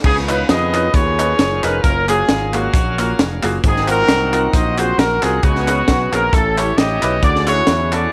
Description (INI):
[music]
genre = uptempo gospel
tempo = 134 BPM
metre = 4/4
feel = swing 55% on 8ths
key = unclear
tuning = A4 = 441 Hz
[part]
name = clear grand piano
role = accompaniment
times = 0.0-8.0 s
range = G#2 to B4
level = -25 LUFS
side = equal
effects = none
[part]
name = bright tonewheel organ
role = sustained chords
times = 0.0-8.1 s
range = D#3 to E#5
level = -33 LUFS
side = equal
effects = none
[part]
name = modern bright fingered electric bass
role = bass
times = 0.0-8.1 s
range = E#1 to E#2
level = -24 LUFS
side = equal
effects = none
[part]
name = crisp fusion drum kit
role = drums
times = 0.0-8.0 s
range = crash cymbal, hi-hat, kick drum, snare drum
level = -20 LUFS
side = equal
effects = none
[part]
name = clear horn section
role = melody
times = 0.1-8.1 s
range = A#3 to D#5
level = -20 LUFS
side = equal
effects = none
[part]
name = group handclap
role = percussion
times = 0.3-8.0 s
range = none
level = -29 LUFS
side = equal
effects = none
[sound]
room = light reverb, studio ambience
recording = none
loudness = -16 LUFS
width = mono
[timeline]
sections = 0.0-8.1 A section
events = none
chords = 0.0 C#9; 1.8 F#maj9; 3.6 G#13; 5.4 C#7sus4; 6.3 A7; 7.2 Dmaj9#11